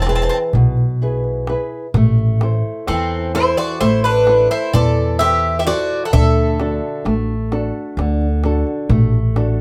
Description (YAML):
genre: greek folk, Greek bouzouki band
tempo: 129 BPM (eighths)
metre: 9/8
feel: straight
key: A dorian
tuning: A4 = 441 Hz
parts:
  - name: Greek bouzouki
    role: melody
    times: 0.0-7.1 s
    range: A4 to A5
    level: -20 LUFS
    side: equal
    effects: plate reverb
  - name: Greek bouzouki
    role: second line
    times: 0.0-7.1 s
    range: C4 to A4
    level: -26 LUFS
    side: equal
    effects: none
  - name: flamenco guitar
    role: accompaniment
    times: 0.0-9.6 s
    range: B2 to C5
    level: -24 LUFS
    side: equal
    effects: none
  - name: upright bass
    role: bass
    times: 0.0-9.6 s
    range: E1 to E2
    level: -20 LUFS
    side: equal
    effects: none
  - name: darbuka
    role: percussion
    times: 0.1-9.6 s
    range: none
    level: -22 LUFS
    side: equal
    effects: none
room: moderate small room reverb, RT60 0.5 s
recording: none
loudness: -17 LUFS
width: mono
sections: 0.0-1.9 A section; 1.9-9.6 B section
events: none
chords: 0.0 E; 1.9 Am; 6.1 D